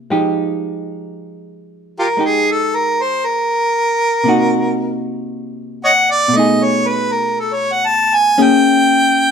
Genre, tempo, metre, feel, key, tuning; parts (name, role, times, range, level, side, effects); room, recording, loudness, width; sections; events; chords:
jazz ballad; 58 BPM; 4/4; swing 69% on 8ths; F minor; A4 = 440 Hz
hollow-body jazz guitar; accompaniment; 0.0-9.3 s; B2 to G#4; -17 LUFS; left 1 dB
warm harmonica; melody; 2.0-9.3 s; F4 to A5; -14 LUFS; equal
moderate stone room reverb, RT60 1.1 s; band playing live in one room; -13 LUFS; side -6 dB against mid
0.1-9.3 A section
harmonica solo 0.1-9.3
0.1 Fm9; 4.2 Cm7b5; 6.3 B6; 8.4 Bbm7